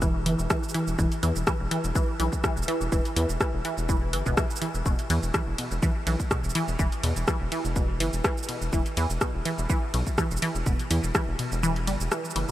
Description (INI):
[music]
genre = minimal techno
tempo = 124 BPM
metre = 4/4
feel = swing 54% on 16ths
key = E minor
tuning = A4 = 439 Hz
[part]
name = resonant blip pluck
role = riff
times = 0.0-12.5 s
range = B2 to G3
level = -29 LUFS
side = equal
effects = phaser, sidechain pumping, analog delay
[part]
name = rubbery square bass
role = bass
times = 0.0-12.5 s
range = E1 to E2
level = -29 LUFS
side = equal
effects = sidechain pumping
[part]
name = electronic kick drum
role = drums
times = 0.0-11.3 s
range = none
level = -27 LUFS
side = equal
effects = none
[part]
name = punchy analog drum machine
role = drums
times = 0.0-12.5 s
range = hi-hat, ride cymbal, rim click, shaker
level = -31 LUFS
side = equal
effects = overdrive
[sound]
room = moderate huge ambient reverb, RT60 7.8 s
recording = dreamy mix soaked in reverb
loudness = -24 LUFS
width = side -14 dB against mid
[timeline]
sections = 0.0-12.5 A section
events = kick drops out 11.6-12.5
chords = 0.0 E5